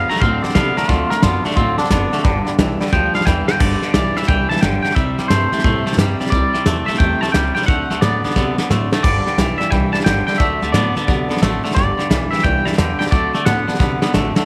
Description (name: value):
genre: rockabilly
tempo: 177 BPM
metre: 4/4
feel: swing 65% on 8ths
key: G major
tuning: A4 = 439 Hz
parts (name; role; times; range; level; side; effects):
- twangy electric guitar; melody; 0.0-14.3 s; D4 to Bb5; -23 LUFS; equal; subtle chorus, tape echo
- picked steel-string acoustic guitar; accompaniment; 0.0-14.4 s; G2 to A4; -30 LUFS; equal; none
- twangy electric guitar; riff; 0.0-14.4 s; G2 to C4; -24 LUFS; equal; none
- upright bass; bass; 0.0-14.4 s; F#1 to C3; -24 LUFS; equal; none
- tack piano; accompaniment; 0.1-3.6, 9.0-14.4 s; D5 to B5; -32 LUFS; equal; none
- soft brush drum kit; drums; 0.1-14.4 s; crash cymbal, hi-hat, kick drum, snare drum; -21 LUFS; equal; none
room: light reverb, studio reverb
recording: none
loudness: -17 LUFS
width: mono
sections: 0.0-3.6 A section; 3.6-14.4 B section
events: clean electric guitar solo 0.0-3.6; drum fill 3.3-3.6, 8.4-9.0, 13.8-14.4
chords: 0.0 D7; 2.2 G; 5.0 C; 7.7 D7; 9.0 G; 10.4 D7; 11.8 G; 13.1 D7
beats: 0.21 0.55 | 0.89 1.23 1.57 1.91 | 2.25 2.59 2.93 3.27 | 3.60 3.94 4.28 4.62 | 4.96 5.30 5.64 5.98 | 6.32 6.66 7.00 7.34 | 7.68 8.02 8.36 8.70 | 9.04 9.38 9.72 10.06 | 10.40 10.74 11.08 11.42 | 11.76 12.10 12.44 12.78 | 13.12 13.46 13.80 14.14